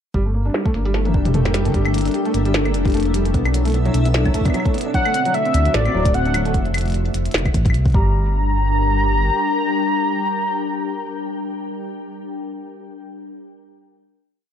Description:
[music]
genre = IDM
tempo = 150 BPM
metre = 4/4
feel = swing 56% on 16ths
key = G dorian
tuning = A4 = 440 Hz
[part]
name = glassy FM pad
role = sustained chords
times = 0.1-12.1 s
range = B2 to G5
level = -25 LUFS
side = left 3 dB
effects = ensemble chorus, built-in reverb
[part]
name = felt-muted upright piano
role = arpeggios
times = 0.1-8.3 s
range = F#3 to D4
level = -26 LUFS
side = right 2 dB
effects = vintage 12-bit sampler grit, ping-pong delay
[part]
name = dark detuned saw bass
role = bass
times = 0.1-9.3 s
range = D1 to D2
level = -19 LUFS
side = equal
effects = none
[part]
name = electronic kick drum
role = drums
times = 0.1-8.0 s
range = none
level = -19 LUFS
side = equal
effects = none
[part]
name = glitchy drum kit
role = drums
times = 0.1-7.9 s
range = claves, hi-hat, snare drum, toms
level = -25 LUFS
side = equal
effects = low-pass filter on hats, low-pass filter on snare, low-pass filter on toms, low-pass filter on perc, low-pass filter on room
[part]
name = backwards swelling texture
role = texture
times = 1.1-6.6 s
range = E4 to E5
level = -33 LUFS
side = equal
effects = built-in reverb
[part]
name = warm velvety synth lead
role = melody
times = 4.9-12.1 s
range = D5 to Bb5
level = -22 LUFS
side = equal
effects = chorus, vintage 12-bit sampler grit, ping-pong delay
[sound]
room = light reverb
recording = dark, warm production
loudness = -16 LUFS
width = side -9 dB against mid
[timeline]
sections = 0.1-1.7 intro; 1.7-8.1 groove; 8.1-11.3 final chord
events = filter sweep on detuned saw bass 0.1-1.7; drum fill 0.9-1.7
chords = 0.1 Gmadd9; 3.3 Bm7; 4.9 D7; 6.5 F; 7.9 Gm

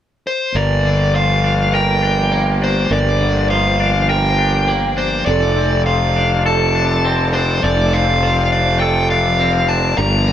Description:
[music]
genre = rock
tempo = 102 BPM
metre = 4/4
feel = straight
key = G minor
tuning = A4 = 441 Hz
[part]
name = dark smooth lead guitar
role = melody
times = 0.3-10.3 s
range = C5 to Bb5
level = -17 LUFS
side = left 1 dB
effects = overdrive
[part]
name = rich studio string section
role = sustained chords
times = 0.5-10.3 s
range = F3 to D5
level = -27 LUFS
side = left 1 dB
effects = none
[part]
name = fuzz fingered electric bass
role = bass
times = 0.5-10.3 s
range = F1 to G1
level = -17 LUFS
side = equal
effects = overdrive
[part]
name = electric guitar through a small old amp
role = arpeggios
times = 0.6-10.3 s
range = A4 to D5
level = -26 LUFS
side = right 5 dB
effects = lush chorus, digital delay
[part]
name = twangy electric guitar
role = arpeggios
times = 0.6-10.3 s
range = G2 to Bb4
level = -23 LUFS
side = left 2 dB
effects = phaser, digital delay
[sound]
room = light reverb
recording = none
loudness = -13 LUFS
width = side -10 dB against mid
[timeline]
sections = 0.6-10.3 A section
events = none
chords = 0.0 N.C.; 0.6 Gm7; 5.3 Dm7/F

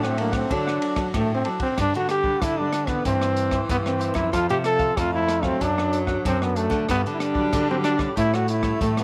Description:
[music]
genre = samba and choro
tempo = 94 BPM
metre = 4/4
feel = straight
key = G major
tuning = A4 = 440 Hz
[part]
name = clear trombone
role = melody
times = 0.0-9.0 s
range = A3 to A4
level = -26 LUFS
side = equal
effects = none
[part]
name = breathy tenor saxophone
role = second line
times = 0.0-9.0 s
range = D3 to A3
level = -34 LUFS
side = equal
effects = none
[part]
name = cavaquinho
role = accompaniment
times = 0.0-9.0 s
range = D4 to F#5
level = -36 LUFS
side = equal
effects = none
[part]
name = nylon-string guitar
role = accompaniment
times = 0.0-9.0 s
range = F2 to E4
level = -36 LUFS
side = equal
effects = none
[part]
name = nylon-string guitar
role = bass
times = 0.0-9.0 s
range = F2 to D3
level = -29 LUFS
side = equal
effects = none
[part]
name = open jazz drum kit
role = drums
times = 0.0-9.0 s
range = hi-hat, kick drum, ride cymbal, rim click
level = -33 LUFS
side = equal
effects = none
[sound]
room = light reverb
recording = none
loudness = -23 LUFS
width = mono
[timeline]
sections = 0.0-1.8 A section; 1.8-9.0 B section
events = none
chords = 0.0 D; 1.8 G; 3.1 C/G; 4.3 F; 5.6 D/F#; 6.9 Gmaj7; 8.2 A7

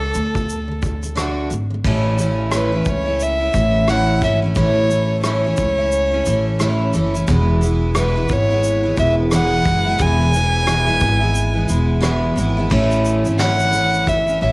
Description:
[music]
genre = acoustic pop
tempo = 88 BPM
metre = 4/4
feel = swing 60% on 16ths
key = A major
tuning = A4 = 439 Hz
[part]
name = dark violin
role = melody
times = 0.0-14.5 s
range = A4 to G#5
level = -19 LUFS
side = equal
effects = none
[part]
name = upright bass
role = bass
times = 0.0-14.5 s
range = E1 to D2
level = -20 LUFS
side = equal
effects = none
[part]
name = picked twelve-string acoustic guitar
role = accompaniment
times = 0.1-14.5 s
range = E2 to F#4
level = -20 LUFS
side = equal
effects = cassette tape
[part]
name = vintage brush drum kit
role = drums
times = 0.1-14.4 s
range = crash cymbal, kick drum, rim click, shaker, snare drum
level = -25 LUFS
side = equal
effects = cassette tape
[sound]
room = light reverb, small room ambience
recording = home recording on cassette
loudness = -15 LUFS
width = side -26 dB against mid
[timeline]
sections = 0.0-1.8 A section; 1.8-12.7 B section; 12.7-14.5 C section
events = none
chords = 0.0 D; 1.8 A; 7.3 E; 12.7 A

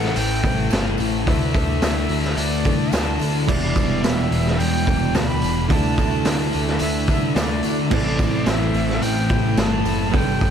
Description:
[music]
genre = rock, shoegaze and dream pop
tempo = 108 BPM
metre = 4/4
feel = straight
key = unclear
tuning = A4 = 440 Hz
[part]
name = breathy bright jazz flute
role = melody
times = 0.0-10.5 s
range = D5 to B5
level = -28 LUFS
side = right 1 dB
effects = analog delay
[part]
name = warbly tape-like pad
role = sustained chords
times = 0.0-10.5 s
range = D4 to A5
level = -34 LUFS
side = equal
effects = chorus, built-in reverb
[part]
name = electric guitar through a small old amp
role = arpeggios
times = 0.0-10.5 s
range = E3 to E4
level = -33 LUFS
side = right 1 dB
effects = none
[part]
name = thick fuzz guitar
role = riff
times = 0.0-10.5 s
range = E2 to D4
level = -25 LUFS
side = left 12 dB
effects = distortion, lush chorus
[part]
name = tight distorted guitar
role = riff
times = 0.0-10.5 s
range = E2 to D4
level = -30 LUFS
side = right 1 dB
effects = distortion
[part]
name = growling picked electric bass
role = bass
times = 0.0-10.5 s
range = E1 to D3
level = -24 LUFS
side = right 1 dB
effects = overdrive
[part]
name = raw garage drum kit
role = drums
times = 0.0-10.5 s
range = crash cymbal, hi-hat, kick drum, snare drum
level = -22 LUFS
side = equal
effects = none
[part]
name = tambourine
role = percussion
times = 0.0-10.5 s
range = none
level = -43 LUFS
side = right 20 dB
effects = none
[part]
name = direct-recorded clean electric guitar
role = riff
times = 3.5-10.5 s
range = E2 to A4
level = -25 LUFS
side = right 12 dB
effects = reverse reverb
[sound]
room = small room ambience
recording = dark, warm production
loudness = -17 LUFS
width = side -8 dB against mid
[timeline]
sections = 0.0-10.5 A section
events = none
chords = 0.0 Am; 1.3 Dsus2; 3.5 Em7; 5.7 Dsus2; 7.9 Am

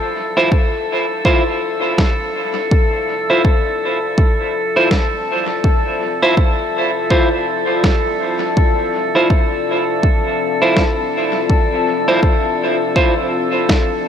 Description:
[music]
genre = ambient dub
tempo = 82 BPM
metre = 4/4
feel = swing 60% on 16ths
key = D minor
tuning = A4 = 440 Hz
[part]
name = deep dark ambient pad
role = sustained chords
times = 0.0-14.1 s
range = C4 to E5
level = -25 LUFS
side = left 1 dB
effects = chorus, built-in reverb
[part]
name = drifting glass-harmonics texture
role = texture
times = 0.0-14.1 s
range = A4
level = -20 LUFS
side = left 3 dB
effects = chorus, built-in reverb
[part]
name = clean electric guitar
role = stabs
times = 0.4-13.1 s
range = E4 to C5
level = -18 LUFS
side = right 1 dB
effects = spring reverb, dub echo
[part]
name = electronic kick drum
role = drums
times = 0.5-13.9 s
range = none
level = -15 LUFS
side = equal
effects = overdrive
[part]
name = electronic snare drum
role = drums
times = 2.0-13.9 s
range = none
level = -24 LUFS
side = equal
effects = dub echo
[sound]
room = light reverb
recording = none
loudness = -14 LUFS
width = side -8 dB against mid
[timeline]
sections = 0.0-14.1 A section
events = fade-in on ambient pad 0.0-14.1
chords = 0.0 Dm9

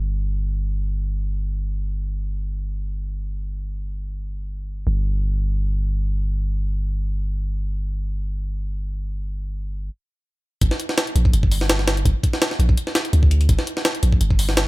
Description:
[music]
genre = drum and bass, jungle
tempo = 167 BPM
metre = 4/4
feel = swing 54% on 16ths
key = G minor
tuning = A4 = 440 Hz
[part]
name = long sustained 808-style bass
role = bass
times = 0.0-14.7 s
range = G1 to D2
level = -21 LUFS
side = equal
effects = tube saturation
[part]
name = jungle sampler-style drum kit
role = drums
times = 10.6-14.7 s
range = hi-hat, kick drum, snare drum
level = -19 LUFS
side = equal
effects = none
[sound]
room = little or no reverb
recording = none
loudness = -20 LUFS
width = side -21 dB against mid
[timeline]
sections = 0.0-10.6 A section; 10.6-14.7 B section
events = stop 9.9-10.6; drop 10.6-14.7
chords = none

